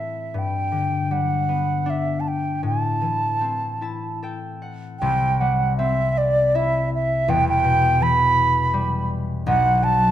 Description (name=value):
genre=celtic folk, Celtic slow air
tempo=74-83 BPM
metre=3/4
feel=rubato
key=unclear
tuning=A4 = 439 Hz
part: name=wooden flute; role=melody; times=0.0-10.1 s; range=D5 to B5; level=-20 LUFS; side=right 2 dB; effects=none
part: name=concert harp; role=accompaniment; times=0.0-10.1 s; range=E1 to A5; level=-23 LUFS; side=left 2 dB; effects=none
room=wet recital hall reverb, RT60 1.6 s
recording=minimal, uncompressed stereo recording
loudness=-18 LUFS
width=side -11 dB against mid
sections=0.0-5.0 A section; 5.0-10.1 B section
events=harp fill 3.4-5.0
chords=0.4 G; 2.6 Am; 5.0 C; 7.3 Em; 9.5 B5